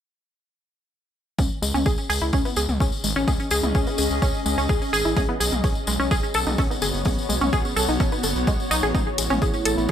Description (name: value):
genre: melodic techno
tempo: 127 BPM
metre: 4/4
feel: straight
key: C# minor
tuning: A4 = 440 Hz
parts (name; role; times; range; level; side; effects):
- analog pluck; arpeggios; 1.4-9.9 s; G#3 to A4; -25 LUFS; equal; chorus, sidechain pumping, digital delay
- gritty driven synth bass; bass; 1.4-9.9 s; F#1 to C#2; -28 LUFS; equal; sidechain pumping
- deep house drum kit; drums; 1.4-9.8 s; hi-hat, toms; -30 LUFS; left 2 dB; overdrive
- electronic kick drum; drums; 1.4-9.9 s; none; -24 LUFS; equal; none
- tambourine; percussion; 1.4-9.9 s; none; -29 LUFS; left 4 dB; none
- granular cloud pad; texture; 2.7-9.9 s; B3 to B5; -28 LUFS; left 1 dB; built-in reverb, sidechain pumping
- dark analog pad; sustained chords; 8.9-9.9 s; A3 to C#5; -28 LUFS; right 4 dB; chorus, sidechain pumping
room: light reverb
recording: bright 1980s-style digital production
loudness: -20 LUFS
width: side -9 dB against mid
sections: 1.4-9.9 A section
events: none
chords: 1.4 C#5; 5.2 B; 8.9 A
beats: | 1.39 1.86 2.33 2.80 | 3.28 3.75 4.22 4.69 | 5.17 5.64 6.11 6.58 | 7.06 7.53 8.00 8.47 | 8.95 9.42 9.89